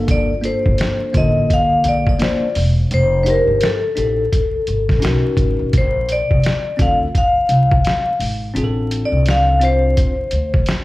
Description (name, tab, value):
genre	hip hop, jazz-hop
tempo	85 BPM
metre	4/4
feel	swing 60% on 16ths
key	Bb major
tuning	A4 = 444 Hz
part	bell-like tine electric piano	accompaniment	0.0-10.1 s	D3 to C5	-22 LUFS	left 1 dB	phaser
part	upright bass	bass	0.0-10.6 s	E1 to D2	-18 LUFS	equal	none
part	vibraphone with medium hard mallets	melody	0.1-10.7 s	A4 to F5	-18 LUFS	left 2 dB	slapback echo
part	trip hop sampler-style drum kit	drums	0.1-10.8 s	hi-hat, kick drum, snare drum	-19 LUFS	equal	none
room	small room ambience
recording	live gig heard through the venue's PA, club reverb, vinyl crackle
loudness	-14 LUFS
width	side -18 dB against mid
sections	0.0-10.8 A section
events	none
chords	0.0 Gm7; 2.9 F13; 5.0 Bmaj9; 5.7 Bbmaj9; 8.6 Dm7/A